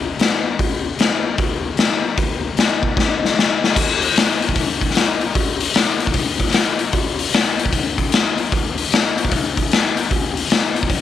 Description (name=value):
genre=rock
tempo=151 BPM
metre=4/4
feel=swing 64% on 8ths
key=none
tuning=none
part: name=raw garage drum kit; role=drums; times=0.2-11.0 s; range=crash cymbal, hi-hat, kick drum, snare drum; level=-16 LUFS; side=left 3 dB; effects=none
room=moderate spring reverb, RT60 2.0 s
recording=1960s-style stereo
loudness=-16 LUFS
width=side -11 dB against mid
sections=0.0-3.8 A section; 3.8-11.0 B section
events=drum fill 3.0-3.8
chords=none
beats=0.20 | 0.59 0.99 1.39 1.78 | 2.18 2.58 2.98 3.37 | 3.77 4.16 4.56 4.96 | 5.35 5.75 6.15 6.54 | 6.94 7.33 7.73 8.13 | 8.52 8.92 9.31 9.71 | 10.11 10.50 10.90